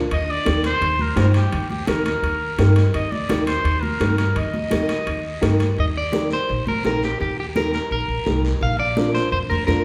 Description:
latin, cumbia; 169 BPM; 4/4; straight; Eb major; A4 = 440 Hz
upright bass; bass; 0.0-9.8 s; Bb1 to G2; -24 LUFS; equal
clear trumpet; second line; 0.1-5.6 s; G4 to Eb5; -27 LUFS; equal
congas; percussion; 0.1-9.8 s; -31 LUFS; equal
guiro; percussion; 0.1-9.8 s; -40 LUFS; equal
timbales; percussion; 0.1-5.8 s; -35 LUFS; equal
dark upright piano; accompaniment; 0.5-9.8 s; D4 to C5; -26 LUFS; equal
electric guitar at the edge of break-up; melody; 5.8-9.8 s; G4 to F5; -26 LUFS; equal; spring reverb
wet recital hall reverb, RT60 1.5 s; recorded in a church or concert hall; -21 LUFS; mono
0.0-5.8 A section; 5.8-9.8 B section
trumpet solo 0.0-5.8
0.1 Eb; 8.6 Bb

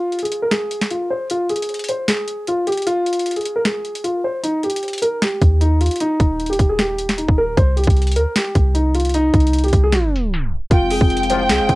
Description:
hip hop, trap; 153 BPM; 4/4; half-time; F minor; A4 = 442 Hz
dark concert grand piano; melody; 0.0-11.8 s; Eb4 to C5; -20 LUFS; equal; cassette tape
trap drum kit; drums; 0.1-11.8 s; hi-hat, kick drum, snare drum; -19 LUFS; equal
warm 808-style bass; bass; 5.4-11.8 s; D1 to F2; -18 LUFS; equal
clear studio violin section; second line; 10.7-11.8 s; G5; -20 LUFS; equal
sweeping resonant pad; sustained chords; 10.7-11.8 s; Ab3 to F4; -22 LUFS; equal; chorus
mellow brass ensemble; stabs; 11.3-11.4 s; C2 to F3; -25 LUFS; left 7 dB
light reverb; home recording on cassette, tape stop; -16 LUFS; side -20 dB against mid
0.0-10.7 A section; 10.7-11.8 B section
break 0.0-4.4; kick muted 4.4-5.2; tape stop 9.9-10.7
0.0 N.C.; 4.4 Eb; 7.6 Cm; 10.7 Fm

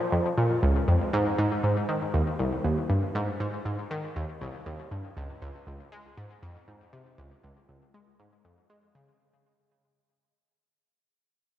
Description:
ambient; 119 BPM; 4/4; straight; A4 = 439 Hz
analog pluck; solo; 0.1-9.1 s; C2 to Ab3; -26 LUFS; equal; chorus, ping-pong delay
wet lush hall reverb, RT60 2.9 s; worn, warbling old tape, cassette tape, warbly pitch drift; -25 LUFS; side -12 dB against mid
0.0-9.2 A section
fade-out 0.0-9.2

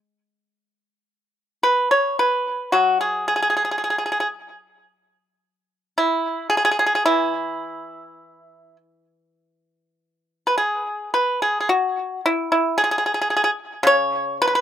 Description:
chinese traditional, Chinese solo plucked strings; 51-57 BPM; 2/4; rubato; E gong mode; A4 = 441 Hz
pipa; solo; 0.0-14.6 s; C#3 to C#5; -18 LUFS; equal; slapback echo
little or no reverb; recorded outdoors, with no room sound; -18 LUFS; side -10 dB against mid
0.0-9.4 A section; 9.4-14.6 B section

